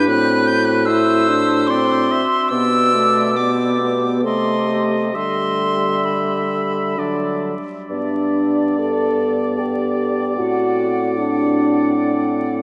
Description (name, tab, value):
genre	classical, slow romantic movement for wind quintet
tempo	64-80 BPM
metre	3/4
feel	rubato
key	G major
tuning	A4 = 440 Hz
part	silver concert flute	melody	0.0-12.6 s	D5 to G6	-25 LUFS	equal	none
part	clear oboe	second line	0.0-12.6 s	B4 to E5	-26 LUFS	equal	none
part	clear French horn	accompaniment	0.0-12.3 s	F#3 to A4	-22 LUFS	equal	none
part	mellow clarinet	accompaniment	0.0-12.6 s	B3 to A4	-28 LUFS	equal	none
part	dark bassoon	bass	0.0-12.6 s	G2 to D3	-25 LUFS	equal	none
room	wet cathedral reverb, RT60 5.8 s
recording	in a vast, echoing space, vinyl crackle, nothing above 10.7 kHz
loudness	-18 LUFS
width	mono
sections	0.0-7.9 A section; 7.9-12.6 B section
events	none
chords	0.1 D7/A; 2.5 G/B; 4.2 Am7b5/C; 5.1 G/D; 7.0 D; 7.9 G; 10.4 D7/A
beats	| 0.09 0.88 1.70 | 2.52 3.37 4.25 | 5.15 6.07 6.99 | 7.91 8.81 9.60 | 10.40 11.19 11.95